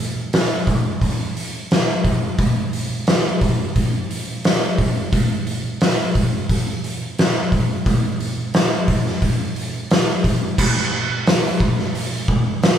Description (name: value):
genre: rock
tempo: 88 BPM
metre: 4/4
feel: straight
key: none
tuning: none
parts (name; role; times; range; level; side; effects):
- oversized low-tuned drum kit; drums; 0.3-12.8 s; crash cymbal, hi-hat, kick drum, snare drum; -17 LUFS; equal; none
room: light reverb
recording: band playing live in one room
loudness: -17 LUFS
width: side -9 dB against mid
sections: 0.0-10.6 A section; 10.6-12.8 B section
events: none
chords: none